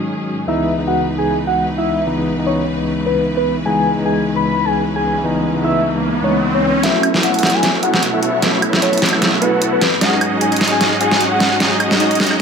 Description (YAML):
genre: future bass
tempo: 151 BPM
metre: 4/4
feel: swing 55% on 16ths, half-time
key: C# minor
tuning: A4 = 440 Hz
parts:
  - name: tine electric piano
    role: accompaniment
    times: 0.0-12.4 s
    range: C#2 to E4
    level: -19 LUFS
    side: left 2 dB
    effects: medium tremolo, tape echo
  - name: rich symphonic string section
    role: sustained chords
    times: 0.0-12.4 s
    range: C#2 to D#5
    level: -26 LUFS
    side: right 1 dB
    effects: low-pass filter
  - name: soft octave-layered synth lead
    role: melody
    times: 0.5-12.2 s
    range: B4 to B5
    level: -19 LUFS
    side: left 1 dB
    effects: chorus, phaser, tape echo
  - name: riser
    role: sound effects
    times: 4.9-6.8 s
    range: none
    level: -22 LUFS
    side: right 1 dB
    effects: none
  - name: supersaw chords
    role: riff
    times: 6.8-12.4 s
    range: B3 to F#5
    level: -19 LUFS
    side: right 2 dB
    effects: low-pass filter
  - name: dubstep drum kit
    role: drums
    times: 6.8-12.4 s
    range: hi-hat, snare drum, woodblock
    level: -16 LUFS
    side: right 1 dB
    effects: overdrive, low-pass filter on hats, low-pass filter on snare, low-pass filter on perc, low-pass filter on room
room: light reverb, digital ambience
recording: none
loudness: -14 LUFS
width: side -6 dB against mid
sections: 0.0-6.8 A section; 6.8-12.4 B section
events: riser 4.9-6.8; build-up 6.8-12.4; drum fill 6.8-12.4; filter sweep on supersaw synth 6.8-12.4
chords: 0.5 C#m7; 6.8 B7sus4; 9.8 G#7sus4